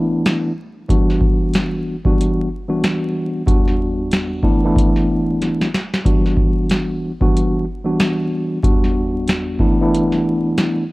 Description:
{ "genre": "hip hop, boom-bap hip-hop", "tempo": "93 BPM", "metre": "4/4", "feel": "swing 60% on 16ths", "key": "E minor", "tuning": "A4 = 440 Hz", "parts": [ { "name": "mellow tine electric piano", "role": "accompaniment", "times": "0.0-10.8 s", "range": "E2 to F#4", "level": "-18 LUFS", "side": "equal", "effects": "medium stereo tremolo, high-pass filter, low-pass filter" }, { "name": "booming analog drum machine", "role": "drums", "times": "0.3-10.8 s", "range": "hi-hat, kick drum, snare drum", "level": "-18 LUFS", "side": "equal", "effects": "none" } ], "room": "light reverb, digital ambience", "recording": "worn, warbling old tape, cassette tape, vinyl crackle, warbly pitch drift", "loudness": "-15 LUFS", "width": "side -21 dB against mid", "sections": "0.0-10.9 A section", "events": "drum fill 5.4-6.1", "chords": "0.0 E7sus4; 0.9 Em9; 4.4 E7sus4; 6.1 Em9; 9.6 E7sus4" }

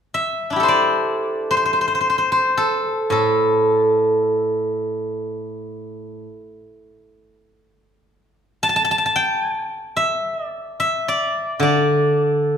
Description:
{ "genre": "chinese traditional, Chinese solo plucked strings", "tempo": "56 BPM", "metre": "4/4", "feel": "rubato", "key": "A yu mode", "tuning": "A4 = 438 Hz", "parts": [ { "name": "steel-string zither", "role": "solo", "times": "0.1-12.6 s", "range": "A2 to A5", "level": "-17 LUFS", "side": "equal", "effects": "none" } ], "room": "wet recital hall reverb, RT60 1.5 s", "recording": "minimal, uncompressed stereo recording", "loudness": "-17 LUFS", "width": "side -8 dB against mid", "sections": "0.0-12.6 A section", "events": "none", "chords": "none" }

